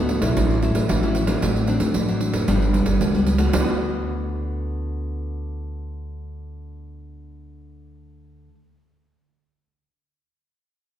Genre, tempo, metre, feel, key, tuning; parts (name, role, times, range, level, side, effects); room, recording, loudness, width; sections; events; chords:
samba and choro; 113 BPM; 4/4; straight; D major; A4 = 439 Hz
nylon-string guitar; accompaniment; 0.0-8.6 s; G2 to F#4; -25 LUFS; left 1 dB
upright bass; bass; 0.0-8.5 s; F#1 to A2; -24 LUFS; equal
pandeiro; percussion; 0.1-3.7 s; -24 LUFS; right 3 dB
wet scoring stage reverb, RT60 1.9 s; recorded in a church or concert hall; -19 LUFS; side -10 dB against mid
0.0-3.5 A section; 3.5-7.8 B section
0.4 A6; 1.4 D7/A; 2.5 G; 3.5 D6